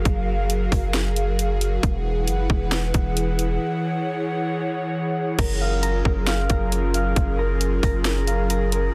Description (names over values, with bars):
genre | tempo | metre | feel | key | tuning
hip hop, atmospheric cloud-rap | 135 BPM | 4/4 | half-time | unclear | A4 = 439 Hz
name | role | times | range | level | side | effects
airy breathy pad | sustained chords | 0.0-8.9 s | E3 to F#5 | -28 LUFS | equal | chorus, sidechain pumping
long sustained 808-style bass | bass | 0.0-8.9 s | E1 to Gb1 | -26 LUFS | equal | none
trap drum kit | drums | 0.1-8.8 s | crash cymbal, hi-hat, kick drum, snare drum | -26 LUFS | equal | overdrive
concert harp | arpeggios | 5.4-8.9 s | Bb4 to Bb5 | -30 LUFS | equal | low-pass filter, digital delay
room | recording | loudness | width
little or no reverb | dense, heavily limited modern master | -23 LUFS | mono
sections
0.0-5.4 A section; 5.4-8.9 B section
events
none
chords
0.0 Gbmaj7; 1.8 Eadd9; 5.4 Gbmaj7